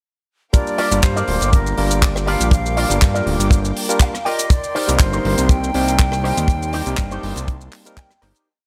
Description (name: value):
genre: nu-disco, nu disco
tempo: 121 BPM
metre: 4/4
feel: straight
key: G minor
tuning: A4 = 440 Hz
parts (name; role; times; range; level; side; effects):
- breathy jazz flute; melody; 0.5-8.0 s; Bb4 to G5; -28 LUFS; equal; analog delay
- barky tine electric piano; accompaniment; 0.5-8.1 s; G3 to Bb4; -27 LUFS; equal; sidechain pumping, slapback echo
- warm studio string section; sustained chords; 0.5-8.4 s; Eb4 to D6; -35 LUFS; equal; sidechain pumping
- kick drum; drums; 0.5-8.1 s; none; -16 LUFS; equal; studio reverb
- tight funk drum kit; drums; 0.5-8.4 s; handclaps, hi-hat, rim click, shaker; -26 LUFS; equal; studio reverb
- electric guitar with an envelope filter; riff; 0.8-8.5 s; Eb4 to G5; -27 LUFS; equal; lush chorus
- fat analog bass; bass; 0.9-8.3 s; D1 to G2; -23 LUFS; equal; none
room: studio reverb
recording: none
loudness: -18 LUFS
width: mono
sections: 0.5-8.5 drop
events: drop 0.5-8.5; clean electric guitar fill 3.8-4.5, 7.7-8.5; fade-out 5.8-8.5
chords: 0.5 Gm7; 4.5 Cm7